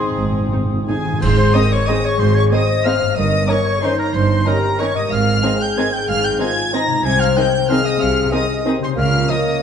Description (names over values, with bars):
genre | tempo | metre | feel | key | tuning
classical, orchestral ballroom waltz | 166-204 BPM | 3/4 | rubato | Ab major | A4 = 441 Hz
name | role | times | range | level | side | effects
warm studio violin section | melody | 0.0-9.6 s | Eb4 to Bb6 | -23 LUFS | left 1 dB | none
clear clarinet | second line | 0.0-9.6 s | Ab4 to Eb5 | -33 LUFS | equal | none
clear studio violin section | second line | 0.0-9.4 s | Db4 to C5 | -33 LUFS | left 2 dB | none
mellow concert flute | second line | 0.0-9.6 s | Ab4 to C6 | -25 LUFS | left 2 dB | none
mellow oboe | second line | 0.0-9.6 s | Ab4 to Eb6 | -25 LUFS | right 1 dB | none
mellow bassoon | accompaniment | 0.0-9.6 s | Bb3 to Db4 | -28 LUFS | right 1 dB | none
dark French horn section | sustained chords | 0.0-9.6 s | C4 to C5 | -22 LUFS | left 6 dB | none
concert harp | arpeggios | 0.0-9.6 s | G2 to Db5 | -28 LUFS | left 8 dB | none
timpani | percussion | 0.0-1.2 s | Ab2 | -24 LUFS | equal | none
dark studio double bass section | bass | 0.2-9.2 s | G1 to Db2 | -22 LUFS | right 3 dB | none
warm studio cello section | bass | 0.2-9.2 s | G2 to Db3 | -23 LUFS | right 4 dB | none
warm studio viola section | accompaniment | 0.5-9.4 s | Eb3 to Eb4 | -25 LUFS | equal | none
clash cymbals and concert bass drum | percussion | 1.2-1.8 s | none | -26 LUFS | right 1 dB | none
room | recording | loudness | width
wet concert hall reverb, RT60 1.9 s | nothing above 10.4 kHz | -14 LUFS | side -7 dB against mid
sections
0.0-1.2 A section; 1.2-9.6 B section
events
timpani fill 0.0-1.2; band accent 1.2-1.5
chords
0.0 Ab; 3.2 Eb7/G; 5.1 Ab; 7.0 Ab/C; 9.0 Bbm/Db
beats
| 0.18 0.52 0.88 | 1.22 1.55 1.88 | 2.20 2.52 2.86 | 3.17 3.50 3.83 | 4.15 4.47 4.80 | 5.12 5.44 5.77 | 6.09 6.40 6.74 | 7.05 7.37 7.70 | 8.01 8.32 8.66 | 8.97 9.29